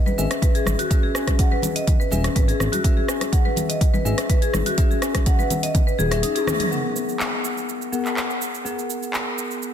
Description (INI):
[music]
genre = afro house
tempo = 124 BPM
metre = 4/4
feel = straight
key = G# minor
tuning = A4 = 441 Hz
[part]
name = bell-like tine electric piano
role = stabs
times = 0.0-9.7 s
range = B3 to F#5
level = -28 LUFS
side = left 3 dB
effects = lush chorus, sidechain pumping, low-pass filter, tape echo
[part]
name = marimba with medium hard mallets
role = arpeggios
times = 0.1-6.7 s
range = D#4 to G#5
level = -26 LUFS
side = left 1 dB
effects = vintage 12-bit sampler grit, sidechain pumping, tape echo
[part]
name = deep house drum kit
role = drums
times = 0.1-9.7 s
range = cabasa, handclaps, hi-hat, rim click, toms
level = -26 LUFS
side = right 1 dB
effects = soft clipping on snare
[part]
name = congas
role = percussion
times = 0.1-6.7 s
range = none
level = -30 LUFS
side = left 3 dB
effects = none
[part]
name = smooth synth bass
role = bass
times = 0.2-6.2 s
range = D#1 to G#1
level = -23 LUFS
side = equal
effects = sidechain pumping
[part]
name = electronic kick drum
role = drums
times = 0.4-5.8 s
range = none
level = -19 LUFS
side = equal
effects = none
[sound]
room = light reverb, digital ambience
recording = dense, heavily limited modern master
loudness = -19 LUFS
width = side -9 dB against mid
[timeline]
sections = 0.0-6.7 A section; 6.7-9.7 B section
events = drum fill 6.4-6.7; band accent 6.5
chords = 0.0 C#m; 6.7 G#m9